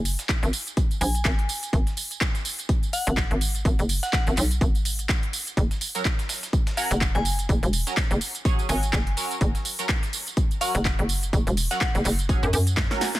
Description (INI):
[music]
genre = bass house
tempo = 125 BPM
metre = 4/4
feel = swing 57% on 16ths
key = unclear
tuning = A4 = 437 Hz
[part]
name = hollow knocking FM bass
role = bass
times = 0.0-12.9 s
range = E1 to F#2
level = -24 LUFS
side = equal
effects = sidechain pumping
[part]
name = big-room dance drum kit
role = drums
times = 0.1-13.2 s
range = handclaps, hi-hat, snare drum, tambourine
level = -28 LUFS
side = right 1 dB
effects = none
[part]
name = dusty soul sampler-style drum kit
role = drums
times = 0.1-13.1 s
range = hi-hat, snare drum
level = -39 LUFS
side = left 2 dB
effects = none
[part]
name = electronic kick drum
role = drums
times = 0.3-12.9 s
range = none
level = -24 LUFS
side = equal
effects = none
[part]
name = glassy synth bell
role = melody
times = 1.0-11.9 s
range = F#5 to G#5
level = -33 LUFS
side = left 2 dB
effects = chorus, dub echo
[part]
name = band-passed chord stab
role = stabs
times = 5.9-13.2 s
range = F#3 to D#5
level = -32 LUFS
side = right 3 dB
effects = phaser, wide subtle chorus, sidechain pumping, dub echo
[sound]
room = digital ambience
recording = none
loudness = -22 LUFS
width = side -16 dB against mid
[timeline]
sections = 0.0-13.2 A section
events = drum fill 12.8-13.2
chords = 0.0 N.C.; 5.6 F#